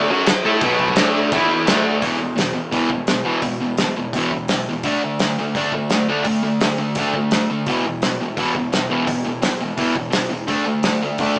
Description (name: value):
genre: garage rock duo or trio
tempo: 170 BPM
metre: 4/4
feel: straight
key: unclear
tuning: A4 = 438 Hz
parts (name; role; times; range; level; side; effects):
- fuzz guitar; riff; 0.0-11.4 s; E2 to A4; -21 LUFS; equal; distortion
- cloth-damped thuddy drum kit; drums; 0.3-11.4 s; crash cymbal, hi-hat, kick drum, snare drum; -24 LUFS; equal; none
room: moderate studio reverb, RT60 0.7 s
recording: band playing live in one room, small speaker sound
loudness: -20 LUFS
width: mono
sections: 0.0-2.0 A section; 2.0-11.4 B section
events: none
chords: 0.0 D5; 0.6 B5; 1.0 D5; 1.3 E5; 1.7 D5; 2.0 E5; 4.8 D5; 7.7 E5; 10.5 D5